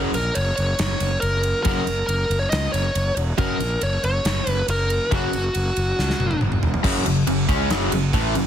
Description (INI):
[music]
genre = hard rock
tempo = 139 BPM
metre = 4/4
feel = straight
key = F# mixolydian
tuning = A4 = 440 Hz
[part]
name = cranked stack guitar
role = riff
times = 0.0-8.5 s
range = F#2 to C#4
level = -22 LUFS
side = left 1 dB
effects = overdrive
[part]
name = fuzz fingered electric bass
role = bass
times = 0.0-8.5 s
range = E1 to C#2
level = -24 LUFS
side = equal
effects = overdrive
[part]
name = bluesy overdriven lead guitar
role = melody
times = 0.1-6.4 s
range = F#4 to D#5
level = -24 LUFS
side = equal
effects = distortion, digital delay
[part]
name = gated 80s drum kit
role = drums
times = 0.1-8.4 s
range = crash cymbal, kick drum, ride cymbal, snare drum, toms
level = -26 LUFS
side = equal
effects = none
[sound]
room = studio reverb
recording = heavily compressed radio sound, multiband compression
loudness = -19 LUFS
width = side -9 dB against mid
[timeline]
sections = 0.0-6.8 A section; 6.8-8.5 B section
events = drum fill 6.0-6.8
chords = 0.0 F#; 6.8 F#5